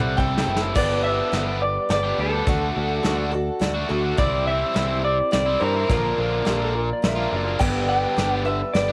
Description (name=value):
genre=folk rock and heartland rock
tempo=105 BPM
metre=3/4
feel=straight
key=unclear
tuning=A4 = 440 Hz
part: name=electric guitar through a small old amp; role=melody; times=0.0-8.9 s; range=A4 to G5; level=-27 LUFS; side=equal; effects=vibrato effect, cassette tape
part: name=picked twelve-string acoustic guitar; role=accompaniment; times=0.0-8.9 s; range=G2 to C5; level=-29 LUFS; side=equal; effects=cassette tape
part: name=overdriven electric guitar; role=riff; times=0.0-8.9 s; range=G2 to A4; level=-30 LUFS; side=equal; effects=cassette tape
part: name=picked electric bass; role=bass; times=0.0-8.9 s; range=F#1 to G2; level=-29 LUFS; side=equal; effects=none
part: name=soft brush drum kit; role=drums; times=0.2-8.9 s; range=crash cymbal, hi-hat, kick drum, snare drum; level=-28 LUFS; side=equal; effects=cassette tape
part: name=electric slide guitar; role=second line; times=6.5-7.6 s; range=G4 to E5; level=-31 LUFS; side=equal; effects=cassette tape
room=light reverb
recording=home recording on cassette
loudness=-22 LUFS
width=mono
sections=0.8-8.9 A section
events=drum fill 0.0-0.8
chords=0.0 C6; 0.8 G; 2.5 D; 4.2 C; 5.9 Bb; 7.6 G